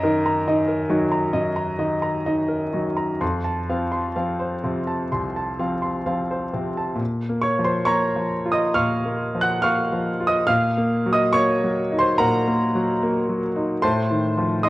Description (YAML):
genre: classical, romantic character piece for solo piano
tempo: 62-74 BPM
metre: 4/4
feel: rubato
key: unclear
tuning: A4 = 440 Hz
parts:
  - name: clear grand piano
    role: solo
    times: 0.0-14.7 s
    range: C2 to Gb6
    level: -20 LUFS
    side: equal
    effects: none
room: moderate large studio reverb, RT60 0.9 s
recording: worn, warbling old tape, cassette tape, warbly pitch drift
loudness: -20 LUFS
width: side -17 dB against mid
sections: 0.0-7.0 A section; 7.0-14.7 B section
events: none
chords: 0.0 Ebm/Gb; 3.2 F; 7.0 Cm7b5/Bb; 13.8 F7/A